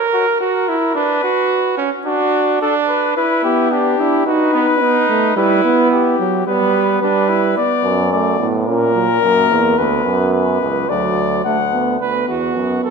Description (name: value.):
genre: classical, imitative canzona for brass ensemble.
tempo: 109 BPM.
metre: 4/4.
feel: straight.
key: unclear.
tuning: A4 = 440 Hz.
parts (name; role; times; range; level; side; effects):
warm trumpet; second line; 0.0-7.6, 12.0-12.9 s; B3 to B4; -18 LUFS; right 4 dB; none.
warm cornet; melody; 0.1-12.0 s; F#4 to F#5; -18 LUFS; left 5 dB; none.
warm trombone; accompaniment; 3.4-12.9 s; F#3 to D#4; -18 LUFS; right 3 dB; none.
clear euphonium; bass; 7.8-12.9 s; C#2 to A#2; -18 LUFS; right 3 dB; none.
room: wet scoring stage reverb, RT60 1.7 s.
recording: minimal, uncompressed stereo recording.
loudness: -13 LUFS.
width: side -5 dB against mid.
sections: 0.0-12.0 A section.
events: none.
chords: 0.0 F#; 1.0 Bm/D; 3.2 Em; 4.3 B; 5.4 Em/G; 7.6 Bm; 8.7 F#/A#; 9.8 Bm/D.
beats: 0.41 | 0.96 1.51 2.06 2.62 | 3.17 3.72 4.27 4.82 | 5.37 5.92 6.47 7.02 | 7.57 8.12 8.68 9.23 | 9.78 10.34 10.89 11.45 | 12.00 12.56.